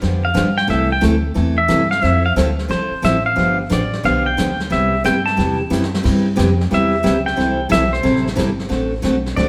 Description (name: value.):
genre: country, western swing.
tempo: 180 BPM.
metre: 4/4.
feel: swing 65% on 8ths.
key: C major.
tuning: A4 = 442 Hz.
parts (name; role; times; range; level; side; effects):
picked steel-string acoustic guitar; accompaniment; 0.0-9.5 s; C3 to A4; -21 LUFS; equal; none.
upright bass; bass; 0.0-9.5 s; G1 to G2; -23 LUFS; equal; none.
vintage brush drum kit; drums; 0.0-9.5 s; brushed snare drum, crash cymbal, hi-hat, kick drum, snare drum; -27 LUFS; equal; none.
pedal steel guitar; melody; 0.2-9.5 s; C5 to A5; -21 LUFS; equal; none.
room: wet stone room reverb, RT60 1.3 s.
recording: band playing live in one room.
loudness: -17 LUFS.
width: mono.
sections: 0.0-9.5 A section.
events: pedal steel guitar solo 0.0-9.5; drum fill 5.7-6.0.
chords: 0.0 G7; 0.7 C6; 2.0 Fmaj7; 3.4 G9; 4.7 Cmaj7; 7.4 Am9; 8.7 D7.